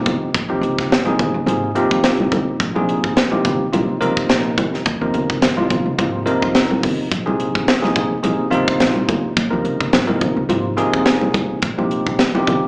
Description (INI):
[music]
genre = electric jazz fusion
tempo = 106 BPM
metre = 4/4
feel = swing 56% on 16ths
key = Bb dorian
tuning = A4 = 441 Hz
[part]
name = bell-like tine electric piano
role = accompaniment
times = 0.0-12.7 s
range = C3 to Bb4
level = -18 LUFS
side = equal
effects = lush chorus
[part]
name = crisp fusion drum kit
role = drums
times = 0.1-12.6 s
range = hi-hat, kick drum, snare drum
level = -19 LUFS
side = equal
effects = none
[part]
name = congas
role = percussion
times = 0.1-12.6 s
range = none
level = -23 LUFS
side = equal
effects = none
[part]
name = upright bass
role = bass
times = 0.3-12.7 s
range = Ab1 to Bb2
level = -25 LUFS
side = equal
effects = none
[sound]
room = light reverb, studio ambience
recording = live gig heard through the venue's PA, club reverb, small speaker sound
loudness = -15 LUFS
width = side -29 dB against mid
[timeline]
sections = 0.0-12.7 A section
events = none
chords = 0.0 Bb7sus2